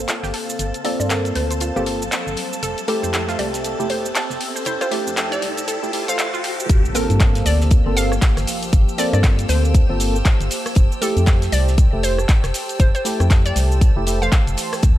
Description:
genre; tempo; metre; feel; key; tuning
deep house; 118 BPM; 4/4; swing 59% on 16ths; G dorian; A4 = 440 Hz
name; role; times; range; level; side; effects
warm analog pad; sustained chords; 0.0-15.0 s; Bb3 to A5; -31 LUFS; left 1 dB; chorus, sidechain pumping
analog pluck; arpeggios; 0.0-6.5 s; E4 to C5; -31 LUFS; right 3 dB; chorus, sidechain pumping, analog delay
organ-like FM bass; bass; 0.0-14.9 s; F1 to G2; -20 LUFS; equal; sidechain pumping
riser and impact; sound effects; 0.5-8.7 s; none; -31 LUFS; equal; none
soft string machine; texture; 0.0-15.0 s; E3 to E6; -33 LUFS; equal; ensemble chorus
warbly tape-like pad; texture; 0.0-15.0 s; F3 to E6; -33 LUFS; equal; chorus, built-in reverb, sidechain pumping
damped 70s drum kit; drums; 0.1-15.0 s; hi-hat, snare drum; -35 LUFS; left 3 dB; none
house drum kit; drums; 0.1-15.0 s; cabasa, handclaps, hi-hat, rim click; -25 LUFS; equal; none
hollow square pluck; melody; 0.8-14.6 s; A4 to F5; -27 LUFS; equal; chorus, analog delay
percussive organ stab; stabs; 0.8-14.8 s; E3 to C5; -25 LUFS; right 1 dB; analog chorus, sidechain pumping, analog delay
electronic kick drum; drums; 6.7-15.0 s; none; -14 LUFS; equal; none
room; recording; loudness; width
light reverb, digital ambience; high-pass filter; -16 LUFS; side -14 dB against mid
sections
0.0-6.7 A section; 6.7-15.0 B section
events
build-up 0.0-6.7; filter sweep on synth pluck 0.0-6.7; riser 0.5-6.7; drop 6.7-15.0; impact 6.7-8.7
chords
0.0 Gm11; 2.6 Fmaj9; 6.7 Gm11; 10.8 Fmaj9

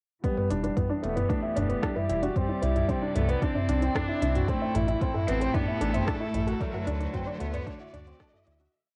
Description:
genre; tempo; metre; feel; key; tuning
piano and strings electronica; 113 BPM; 4/4; straight; E minor; A4 = 440 Hz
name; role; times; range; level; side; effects
warm cello; melody; 0.2-8.5 s; F#3 to D4; -36 LUFS; equal; low-pass filter, cassette tape
rich string quartet; sustained chords; 0.2-8.7 s; A2 to D5; -38 LUFS; equal; sidechain pumping, low-pass filter, cassette tape
soft round pluck; arpeggios; 0.2-8.7 s; D4 to A5; -40 LUFS; equal; chorus, vintage 12-bit sampler grit, sidechain pumping, cassette tape, tape echo
warm upright piano; riff; 0.2-8.7 s; A3 to F#4; -34 LUFS; equal; cassette tape
electronic kick drum; drums; 0.2-8.3 s; none; -33 LUFS; equal; cassette tape
organic electronic drum kit; drums; 0.2-8.7 s; hi-hat, rim click, toms; -36 LUFS; equal; cassette tape
riser; sound effects; 4.9-8.7 s; none; -49 LUFS; equal; none
round analog bass; bass; 0.5-8.7 s; E1 to D2; -32 LUFS; equal; sidechain pumping
room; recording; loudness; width
moderate booth ambience, RT60 0.2 s; home recording on cassette; -28 LUFS; mono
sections
0.2-8.7 build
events
build-up 0.2-8.7; filter sweep on string quartet 0.2-8.7; filter sweep on synth arpeggio sound 0.2-8.7; filter sweep on cello 0.2-8.7; fade-out 5.9-8.7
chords
0.2 Em7; 2.4 Cadd9; 4.5 Am; 6.6 D

